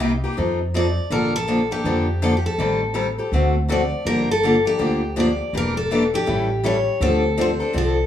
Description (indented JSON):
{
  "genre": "acoustic string swing (jazz manouche)",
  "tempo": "162 BPM",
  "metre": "4/4",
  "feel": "swing 61% on 8ths",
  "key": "D minor",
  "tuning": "A4 = 440 Hz",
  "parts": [
    { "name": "picked steel-string acoustic guitar", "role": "accompaniment", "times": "0.0-8.0 s", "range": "C3 to A4", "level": "-22 LUFS", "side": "left 2 dB", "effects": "none" },
    { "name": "upright bass", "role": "bass", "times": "0.0-8.1 s", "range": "E1 to F2", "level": "-24 LUFS", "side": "equal", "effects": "none" },
    { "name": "picked steel-string acoustic guitar", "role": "melody", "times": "0.8-8.1 s", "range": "G4 to D5", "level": "-23 LUFS", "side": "left 1 dB", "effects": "slapback echo, plate reverb" }
  ],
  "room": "moderate studio reverb, RT60 0.9 s",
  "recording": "small room ambience",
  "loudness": "-18 LUFS",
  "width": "side -10 dB against mid",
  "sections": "0.0-8.1 A section",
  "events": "none",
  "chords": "0.4 F7; 1.1 Bbmaj7; 2.6 Am7b5; 3.3 D7; 4.1 Gm9; 5.5 Em7b5; 6.3 A7; 7.0 Dm7"
}